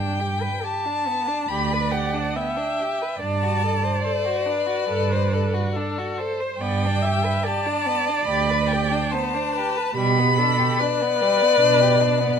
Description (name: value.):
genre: classical, slow romantic movement for string quartet.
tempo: 71 BPM.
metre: 4/4.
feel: rubato.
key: G major.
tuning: A4 = 443 Hz.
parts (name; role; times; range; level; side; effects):
rich violin; melody; 0.0-12.4 s; D5 to B5; -23 LUFS; left 4 dB; none.
rich violin; second line; 0.0-12.4 s; G3 to C5; -28 LUFS; left 2 dB; none.
warm cello; bass; 0.0-12.3 s; D2 to B2; -25 LUFS; right 4 dB; none.
rich viola; accompaniment; 1.5-12.4 s; G4 to E5; -26 LUFS; right 2 dB; none.
room: light reverb.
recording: none.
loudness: -19 LUFS.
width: side -7 dB against mid.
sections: 0.0-12.4 A section.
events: none.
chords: 0.0 G; 3.2 D7/G; 6.6 G; 9.9 G/B.